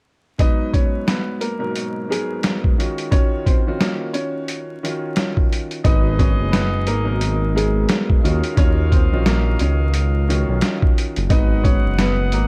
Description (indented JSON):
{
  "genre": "hip hop, boom-bap hip-hop",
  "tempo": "88 BPM",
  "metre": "4/4",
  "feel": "swing 59% on 16ths",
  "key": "G# minor",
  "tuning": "A4 = 442 Hz",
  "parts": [
    { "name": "warm upright piano", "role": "melody", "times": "0.4-12.5 s", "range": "G#3 to D#5", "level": "-28 LUFS", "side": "equal", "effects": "high-pass filter, low-pass filter" },
    { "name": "dark baby grand piano", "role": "accompaniment", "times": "0.4-12.4 s", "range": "G#2 to B4", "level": "-28 LUFS", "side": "equal", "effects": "cassette tape, high-pass filter, low-pass filter" },
    { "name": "boom bap sampler-style drum kit", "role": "drums", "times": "0.4-12.5 s", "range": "hi-hat, kick drum, snare drum", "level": "-21 LUFS", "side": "equal", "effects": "none" },
    { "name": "bright horn section", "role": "stabs", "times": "5.8-12.5 s", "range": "D#4 to F#5", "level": "-32 LUFS", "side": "equal", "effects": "high-pass filter, low-pass filter, tape echo" },
    { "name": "smooth gliding synth bass", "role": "bass", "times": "5.8-12.5 s", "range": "F#1 to D#2", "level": "-21 LUFS", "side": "equal", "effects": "none" }
  ],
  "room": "studio ambience",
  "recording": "dark, warm production, vinyl crackle",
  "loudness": "-19 LUFS",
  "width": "mono",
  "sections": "0.4-5.8 A section; 5.8-12.5 B section",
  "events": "none",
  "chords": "0.4 G#m9; 2.8 D#m9; 5.8 G#m9; 8.2 D#m9; 11.3 G#m9"
}